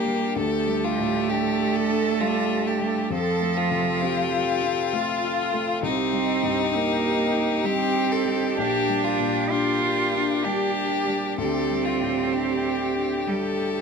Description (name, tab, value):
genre	neoclassical piano and strings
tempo	65 BPM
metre	3/4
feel	rubato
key	unclear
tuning	A4 = 441 Hz
part	rich violin	melody	0.0-13.8 s	D4 to A4	-26 LUFS	left 6 dB	tape echo
part	rich cello	second line	0.0-13.8 s	F3 to F4	-26 LUFS	right 7 dB	none
part	felt-muted upright piano	accompaniment	0.0-13.8 s	Bb1 to G4	-29 LUFS	left 6 dB	none
part	rich viola	accompaniment	0.0-13.8 s	F4 to A4	-30 LUFS	right 4 dB	none
part	pedal harmonium	sustained chords	0.0-13.8 s	A3 to F5	-33 LUFS	equal	none
room	light reverb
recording	none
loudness	-21 LUFS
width	side -5 dB against mid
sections	0.0-13.8 A section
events	none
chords	0.4 Dsus4; 3.1 F; 5.8 Cm; 8.6 Gm/Bb; 11.4 Dsus4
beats	| 0.37 1.29 2.20 | 3.10 4.02 4.93 | 5.84 6.74 7.65 | 8.58 9.51 10.44 | 11.38 12.31 13.27